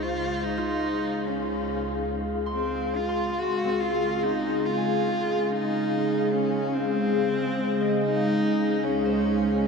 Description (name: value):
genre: ambient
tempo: 71 BPM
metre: 3/4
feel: straight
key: Db major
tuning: A4 = 440 Hz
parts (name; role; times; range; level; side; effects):
- dark cello; melody; 0.0-9.7 s; C4 to Gb4; -28 LUFS; equal; ping-pong delay
- warbly tape-like pad; sustained chords; 0.0-9.7 s; Db2 to F5; -25 LUFS; left 1 dB; chorus, built-in reverb
- concert harp; arpeggios; 0.0-9.7 s; C4 to C6; -35 LUFS; equal; ping-pong delay
room: wet huge ambient reverb, RT60 8.0 s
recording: dark, warm production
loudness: -23 LUFS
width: side -5 dB against mid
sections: 0.0-9.7 A section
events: fade-in on ambient pad 0.0-9.7; fade-in on cello 0.0-9.7; fade-out on harp 0.0-9.7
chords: 0.0 Fm/Db; 3.8 Dbmaj7